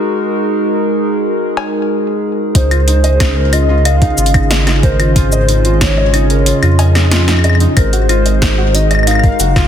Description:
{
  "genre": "IDM",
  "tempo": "92 BPM",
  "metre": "4/4",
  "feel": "straight",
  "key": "unclear",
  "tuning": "A4 = 440 Hz",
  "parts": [
    { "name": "hollow soft pad", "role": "sustained chords", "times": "0.0-9.7 s", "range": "Db3 to Eb5", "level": "-16 LUFS", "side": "right 1 dB", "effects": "chorus, vintage 12-bit sampler grit" },
    { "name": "electro analog drum machine", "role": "drums", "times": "1.6-9.7 s", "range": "cabasa, cowbell, hi-hat, snare drum, woodblock", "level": "-18 LUFS", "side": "left 2 dB", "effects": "ping-pong delay" },
    { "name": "felt-muted upright piano", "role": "arpeggios", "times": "2.5-9.7 s", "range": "Eb4 to Eb5", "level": "-21 LUFS", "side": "right 1 dB", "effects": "vintage 12-bit sampler grit, tape echo" },
    { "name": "dark detuned saw bass", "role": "bass", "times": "2.5-9.7 s", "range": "Gb1 to F2", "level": "-12 LUFS", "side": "equal", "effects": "none" },
    { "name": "electronic kick drum", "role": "drums", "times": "2.5-9.7 s", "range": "none", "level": "-12 LUFS", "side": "equal", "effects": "none" },
    { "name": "warbly nostalgic lead", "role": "melody", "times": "2.6-9.7 s", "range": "C5 to F5", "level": "-18 LUFS", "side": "left 2 dB", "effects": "chorus, tremolo, tape echo" }
  ],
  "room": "light reverb",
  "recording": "dense, heavily limited modern master, faint mains hum",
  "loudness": "-10 LUFS",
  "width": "side -9 dB against mid",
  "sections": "0.0-2.6 A section; 2.6-9.7 B section",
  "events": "none",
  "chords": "0.0 Ab5; 2.6 Dbmaj7; 7.8 Ab7"
}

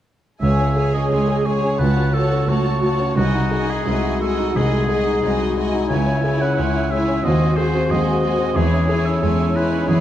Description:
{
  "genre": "classical, romantic movement for piano and orchestra",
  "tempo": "88 BPM",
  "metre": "4/4",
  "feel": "uneven beats, rubato",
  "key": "C# minor",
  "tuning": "A4 = 440 Hz",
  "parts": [
    { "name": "clear grand piano", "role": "melody", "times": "0.4-10.0 s", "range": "B#1 to A4", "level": "-19 LUFS", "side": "left 1 dB", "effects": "none" },
    { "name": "warm studio violin section", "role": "melody", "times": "0.4-10.0 s", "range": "G#5 to A5", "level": "-33 LUFS", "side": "left 2 dB", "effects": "none" },
    { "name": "rich chamber violin section", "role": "second line", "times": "0.4-10.0 s", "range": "E4 to D#5", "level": "-26 LUFS", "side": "left 2 dB", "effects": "none" },
    { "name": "warm oboe", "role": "second line", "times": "0.4-10.0 s", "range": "F#4 to G#5", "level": "-26 LUFS", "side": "right 3 dB", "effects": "none" },
    { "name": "warm studio viola section", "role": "accompaniment", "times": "0.4-10.0 s", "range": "C#4 to G#4", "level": "-27 LUFS", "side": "right 1 dB", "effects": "none" },
    { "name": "warm studio cello section", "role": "bass", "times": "0.4-10.0 s", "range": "B#1 to E2", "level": "-24 LUFS", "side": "right 2 dB", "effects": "none" }
  ],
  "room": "moderate scoring stage reverb, RT60 1.7 s",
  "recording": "dark, warm production",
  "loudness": "-16 LUFS",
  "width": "side -11 dB against mid",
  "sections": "0.4-10.0 A section",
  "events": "none",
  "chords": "0.4 C#5; 1.8 F#m/C#; 3.2 G#7/B#; 5.9 C#m; 7.3 G#7/D#; 8.6 C#m/E"
}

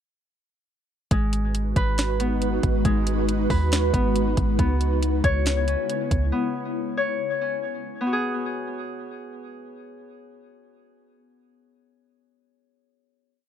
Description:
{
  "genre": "hip hop, atmospheric cloud-rap",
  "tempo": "138 BPM",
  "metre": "4/4",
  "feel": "half-time",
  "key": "G# minor",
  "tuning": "A4 = 441 Hz",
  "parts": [
    { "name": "ethereal airy pad", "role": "sustained chords", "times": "1.6-6.3 s", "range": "C#3 to B4", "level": "-28 LUFS", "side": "right 1 dB", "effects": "ensemble chorus, built-in reverb, sidechain pumping" },
    { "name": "Celtic harp", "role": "arpeggios", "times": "1.1-11.2 s", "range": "G#3 to C#5", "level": "-27 LUFS", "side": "left 3 dB", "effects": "low-pass filter, ping-pong delay" },
    { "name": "soft 808-style bass", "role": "bass", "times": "1.1-6.3 s", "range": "G#1 to D#2", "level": "-24 LUFS", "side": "equal", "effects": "none" },
    { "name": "smooth R&B drum kit", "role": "drums", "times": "1.1-6.2 s", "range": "hi-hat, kick drum, snare drum", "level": "-24 LUFS", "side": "right 1 dB", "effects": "none" }
  ],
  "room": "little or no reverb",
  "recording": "none",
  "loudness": "-21 LUFS",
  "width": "side -9 dB against mid",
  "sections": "1.1-8.1 verse; 8.1-11.5 final chord",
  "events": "none",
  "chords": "1.1 G#m7; 4.6 C#m7; 8.1 G#m7"
}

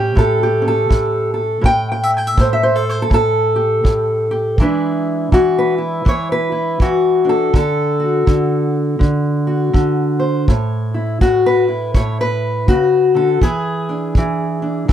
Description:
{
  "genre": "acoustic country blues, solo or duo",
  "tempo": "82 BPM",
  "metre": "4/4",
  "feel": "swing 61% on 8ths",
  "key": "A major",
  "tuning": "A4 = 440 Hz",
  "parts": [
    { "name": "fingerpicked steel-string acoustic guitar", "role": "melody", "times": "0.0-14.9 s", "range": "A2 to G5", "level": "-14 LUFS", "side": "equal", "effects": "none" },
    { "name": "kick drum", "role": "drums", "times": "0.2-14.9 s", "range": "none", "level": "-14 LUFS", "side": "equal", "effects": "none" }
  ],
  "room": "little or no reverb",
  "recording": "dry, close 1970s-style studio recording",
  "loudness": "-14 LUFS",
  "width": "side -10 dB against mid",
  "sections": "0.0-14.9 A section",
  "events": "none",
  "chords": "0.0 A7; 4.6 E7; 7.5 D; 10.5 A; 13.4 E7"
}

